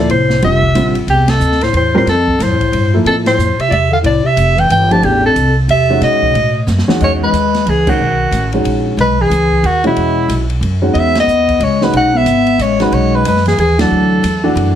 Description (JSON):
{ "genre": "modal jazz", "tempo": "182 BPM", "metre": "3/4", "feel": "swing 62% on 8ths", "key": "F major, E major from 7.0 s", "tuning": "A4 = 440 Hz", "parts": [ { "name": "warm soprano saxophone", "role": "melody", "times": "0.0-14.5 s", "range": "E4 to A5", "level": "-14 LUFS", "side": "right 1 dB", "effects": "none" }, { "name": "dark bass clarinet", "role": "second line", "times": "0.0-14.5 s", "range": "E2 to D#4", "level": "-16 LUFS", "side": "left 3 dB", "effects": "none" }, { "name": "warm baby grand piano", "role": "accompaniment", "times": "0.0-14.8 s", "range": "E2 to Bb4", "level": "-16 LUFS", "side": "equal", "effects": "none" }, { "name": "upright bass", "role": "bass", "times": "0.0-14.8 s", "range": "F1 to B2", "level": "-17 LUFS", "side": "equal", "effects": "none" }, { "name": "open jazz drum kit", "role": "drums", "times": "0.1-14.7 s", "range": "crash cymbal, hi-hat, kick drum, ride cymbal, snare drum", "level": "-24 LUFS", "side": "equal", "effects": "none" } ], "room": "moderate studio ambience, RT60 0.5 s", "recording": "heavily compressed radio sound", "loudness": "-10 LUFS", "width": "side -10 dB against mid", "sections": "0.0-7.0 A section; 7.0-14.8 B section", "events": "band accent 1.2, 3.2, 7.8, 11.1, 13.7; drum fill 6.7-7.0", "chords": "0.0 Fmaj9; 6.0 B13; 7.0 Emaj9; 13.9 Dadd9", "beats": "| 0.09 0.42 0.75 | 1.08 1.41 1.74 | 2.07 2.40 2.73 | 3.06 3.38 3.71 | 4.04 4.37 4.70 | 5.03 5.36 5.69 | 6.02 6.34 6.67 | 7.00 7.33 7.66 | 7.99 8.32 8.65 | 8.98 9.30 9.63 | 9.96 10.29 10.62 | 10.95 11.28 11.61 | 11.94 12.26 12.59 | 12.92 13.25 13.58 | 13.90 14.23 14.56" }